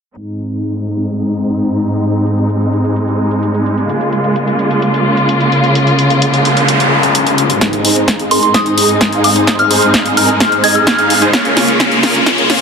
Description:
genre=EDM, festival progressive house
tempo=129 BPM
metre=4/4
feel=straight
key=Ab major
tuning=A4 = 440 Hz
part: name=warm studio string section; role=sustained chords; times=0.2-12.6 s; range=Ab2 to F4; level=-14 LUFS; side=equal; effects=sidechain pumping, low-pass filter
part: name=house drum kit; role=drums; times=0.2-12.6 s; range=hi-hat, snare drum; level=-15 LUFS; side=equal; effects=none
part: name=noise sweep and riser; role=sound effects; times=6.1-12.6 s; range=none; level=-17 LUFS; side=left 2 dB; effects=none
part: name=supersaw chords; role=riff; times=7.6-12.6 s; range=Bb3 to F5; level=-15 LUFS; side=right 2 dB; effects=phaser, sidechain pumping, low-pass filter, dub echo
part: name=electronic kick drum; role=drums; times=7.6-12.4 s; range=none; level=-20 LUFS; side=equal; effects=high-pass filter on kick
part: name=soft synth bell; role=melody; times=8.3-11.1 s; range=C6 to Ab6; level=-15 LUFS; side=equal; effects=chorus, phaser, vintage 12-bit sampler grit, dub echo
room=moderate huge ambient reverb, RT60 4.9 s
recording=dense, heavily limited modern master, high-pass filter, low-pass filter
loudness=-10 LUFS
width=side -6 dB against mid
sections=0.2-7.6 A section; 7.6-12.6 B section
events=filter sweep on string section 0.2-7.6; filter sweep 0.2-7.6; noise sweep 6.1-7.6; build-up 7.6-12.6; drum fill 7.6-12.6; riser 7.6-12.6; filter sweep on supersaw synth 7.6-12.6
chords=0.2 Ab; 3.9 Db6; 7.6 Ab; 11.3 Db6

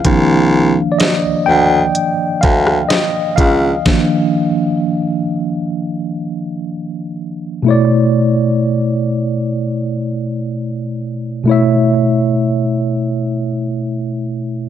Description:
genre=contemporary R&B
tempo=63 BPM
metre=4/4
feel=straight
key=B minor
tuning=A4 = 438 Hz
part: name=mellow tine electric piano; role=accompaniment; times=0.0-14.7 s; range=B2 to G5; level=-14 LUFS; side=equal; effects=medium stereo tremolo
part: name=warm baritone saxophone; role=bass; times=0.0-3.7 s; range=C2 to D2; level=-14 LUFS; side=equal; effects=none
part: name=smooth R&B drum kit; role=drums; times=0.0-4.1 s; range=hi-hat, kick drum, rim click, snare drum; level=-16 LUFS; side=equal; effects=vintage 12-bit sampler grit
room=light reverb, digital ambience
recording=none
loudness=-13 LUFS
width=side -10 dB against mid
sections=0.0-7.7 A section; 7.7-14.7 A section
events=tine electric piano solo 0.0-7.7; stop 3.9-7.7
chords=0.0 Cm11 (rootless); 7.7 Bm11

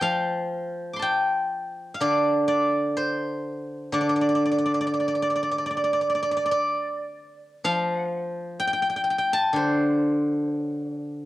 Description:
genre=chinese traditional, Chinese solo plucked strings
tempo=58-66 BPM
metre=4/4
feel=rubato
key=D yu mode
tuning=A4 = 440 Hz
part: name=steel-string zither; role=solo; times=0.0-11.3 s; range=D3 to D6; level=-22 LUFS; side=equal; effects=none
room=light reverb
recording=home recording on cassette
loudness=-22 LUFS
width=side -16 dB against mid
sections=0.0-11.3 A section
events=none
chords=none

